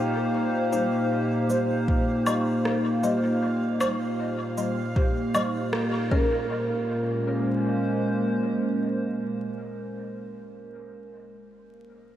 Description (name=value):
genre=ambient dub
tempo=78 BPM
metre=4/4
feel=straight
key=Bb dorian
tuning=A4 = 440 Hz
part: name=warbly tape-like pad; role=sustained chords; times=0.0-10.3 s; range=Bb2 to C5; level=-26 LUFS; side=equal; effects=chorus, built-in reverb
part: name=vibraphone with hard mallets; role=arpeggios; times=0.0-12.1 s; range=G4 to F5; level=-35 LUFS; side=right 2 dB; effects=dub echo
part: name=filtered dub chord stab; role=stabs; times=0.0-10.8 s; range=G3 to C5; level=-31 LUFS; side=left 1 dB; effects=phaser, analog chorus, dub echo
part: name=bubbling stepped-filter texture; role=texture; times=0.0-6.5 s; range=F5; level=-39 LUFS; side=right 3 dB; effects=chorus, built-in reverb
part: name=electronic cabasa, woodblock and rim click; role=drums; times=0.7-5.9 s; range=none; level=-34 LUFS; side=left 1 dB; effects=overdrive, dub echo
part: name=electronic kick drum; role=drums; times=1.9-6.3 s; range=none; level=-24 LUFS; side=equal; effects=overdrive
room=wet huge ambient reverb, RT60 7.0 s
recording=dreamy mix soaked in reverb, vinyl crackle, faint mains hum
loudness=-23 LUFS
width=side -12 dB against mid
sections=0.0-6.5 A section; 6.5-9.6 B section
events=band accent 5.7-6.1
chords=0.0 Cm/Bb; 6.1 Bbm7